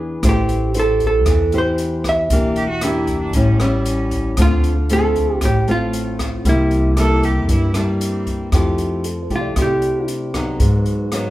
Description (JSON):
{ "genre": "bossa nova", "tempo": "116 BPM", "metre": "4/4", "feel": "straight", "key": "F major", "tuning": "A4 = 436 Hz", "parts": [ { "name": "nylon-string guitar", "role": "accompaniment", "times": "0.0-11.3 s", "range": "G2 to C5", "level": "-20 LUFS", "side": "left 1 dB", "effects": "none" }, { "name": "upright bass", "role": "bass", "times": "0.0-11.3 s", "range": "E1 to Ab2", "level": "-21 LUFS", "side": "equal", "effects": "none" }, { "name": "open jazz drum kit", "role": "drums", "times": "0.2-11.2 s", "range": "hi-hat, kick drum, rim click", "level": "-22 LUFS", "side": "equal", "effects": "none" }, { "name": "vintage hollow-body jazz guitar", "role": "melody", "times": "0.3-10.1 s", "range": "E4 to E5", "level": "-20 LUFS", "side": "right 2 dB", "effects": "none" }, { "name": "mellow tine electric piano", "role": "accompaniment", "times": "0.8-2.3, 9.0-11.3 s", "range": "Ab4 to D5", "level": "-32 LUFS", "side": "right 2 dB", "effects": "medium stereo tremolo" }, { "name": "rich cello", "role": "second line", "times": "2.6-8.5 s", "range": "C4 to A4", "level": "-25 LUFS", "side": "right 2 dB", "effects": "none" } ], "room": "moderate large studio reverb, RT60 0.9 s", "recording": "band playing live in one room", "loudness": "-15 LUFS", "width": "side -16 dB against mid", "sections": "0.0-8.5 A section; 8.5-11.3 B section", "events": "hollow-body jazz guitar solo 8.5-11.3", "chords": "0.2 Am7; 2.3 Em7b5; 3.3 A7; 4.4 Dm7; 6.5 C7; 8.5 Fmaj9; 10.6 Abm7", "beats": "| 0.24 0.76 1.27 1.79 | 2.31 2.83 3.35 3.87 | 4.38 4.90 5.42 5.94 | 6.46 6.97 7.49 8.01 | 8.53 9.05 9.57 10.09 | 10.61 11.13" }